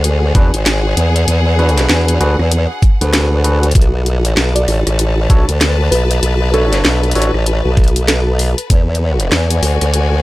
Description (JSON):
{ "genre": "glitch hop", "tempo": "97 BPM", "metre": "4/4", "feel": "swing 61% on 16ths", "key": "B dorian", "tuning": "A4 = 441 Hz", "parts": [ { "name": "formant-sweep wobble bass", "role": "bass", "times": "0.0-10.2 s", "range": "G#1 to E2", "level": "-13 LUFS", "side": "equal", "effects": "chorus" }, { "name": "drum and bass drum kit", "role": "drums", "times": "0.0-10.1 s", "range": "hi-hat, rim click, snare drum", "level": "-17 LUFS", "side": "equal", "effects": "none" }, { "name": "clear studio string section", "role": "texture", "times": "0.0-10.2 s", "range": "F#4 to A5", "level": "-23 LUFS", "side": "left 4 dB", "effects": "sidechain pumping" }, { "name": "overdriven tine electric piano", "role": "stabs", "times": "0.3-7.3 s", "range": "D4 to C#5", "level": "-20 LUFS", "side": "equal", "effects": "sidechain pumping, tape echo" }, { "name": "electronic kick drum", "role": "drums", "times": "0.3-8.8 s", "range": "none", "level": "-10 LUFS", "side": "equal", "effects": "none" }, { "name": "woody wave-folded pluck", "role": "melody", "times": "4.6-8.3 s", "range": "A4 to D5", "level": "-20 LUFS", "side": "right 1 dB", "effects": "chorus, vintage 12-bit sampler grit, tape echo" } ], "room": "little or no reverb", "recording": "none", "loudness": "-11 LUFS", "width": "side -18 dB against mid", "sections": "0.0-10.2 A section", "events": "none", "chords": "0.0 E9; 3.8 Bm7; 8.7 E9" }